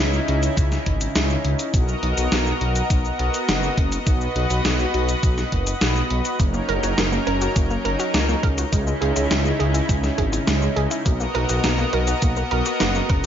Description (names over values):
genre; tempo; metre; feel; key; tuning
synthwave; 103 BPM; 4/4; straight; B major; A4 = 441 Hz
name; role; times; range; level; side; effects
lush unison pad; sustained chords; 0.0-13.3 s; C#3 to D#5; -24 LUFS; equal; chorus, sidechain pumping
dark detuned saw bass; bass; 0.0-13.3 s; F#1 to C#2; -23 LUFS; equal; none
gated 80s digital drum machine; drums; 0.1-13.2 s; hi-hat, shaker, snare drum; -25 LUFS; equal; gated reverb, gated reverb snare
electronic kick drum; drums; 0.6-13.2 s; none; -21 LUFS; equal; none
warbly dusty pluck; arpeggios; 6.4-13.1 s; G#3 to A#4; -27 LUFS; right 3 dB; chorus, ping-pong delay
room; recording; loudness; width
light reverb, digital ambience; nothing above 7.5 kHz; -18 LUFS; side -9 dB against mid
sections
0.0-13.3 A section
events
none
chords
0.0 C#madd9; 1.7 Bmaj7; 6.4 F#6; 8.7 C#madd9; 11.1 Bmaj7